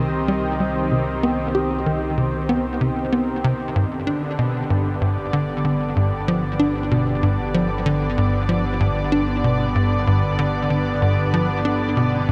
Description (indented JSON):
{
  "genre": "ambient, sequencer-driven space music",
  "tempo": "95 BPM",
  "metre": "4/4",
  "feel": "straight",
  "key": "unclear",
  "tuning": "A4 = 441 Hz",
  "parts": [
    { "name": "lush unison pad", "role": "sustained chords", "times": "0.0-12.3 s", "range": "D3 to Eb5", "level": "-25 LUFS", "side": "equal", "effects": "chorus" },
    { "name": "tight sequencer bass", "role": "riff", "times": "0.0-12.3 s", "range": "G2 to G4", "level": "-23 LUFS", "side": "equal", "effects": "analog chorus, tape echo" },
    { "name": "analog drone", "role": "bass", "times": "0.0-12.3 s", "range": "G1 to C2", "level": "-31 LUFS", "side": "equal", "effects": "chorus" }
  ],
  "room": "wet cathedral reverb, RT60 7.3 s",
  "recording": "in a vast, echoing space",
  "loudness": "-21 LUFS",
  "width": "mono",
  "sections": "0.0-12.3 A section",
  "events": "none",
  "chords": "0.0 Cm; 3.8 G",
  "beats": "0.60 | 1.23 1.86 2.49 3.12 | 3.76 4.39 5.02 5.65 | 6.28 6.91 7.54 8.18 | 8.81 9.44 10.07 10.70 | 11.34 11.97"
}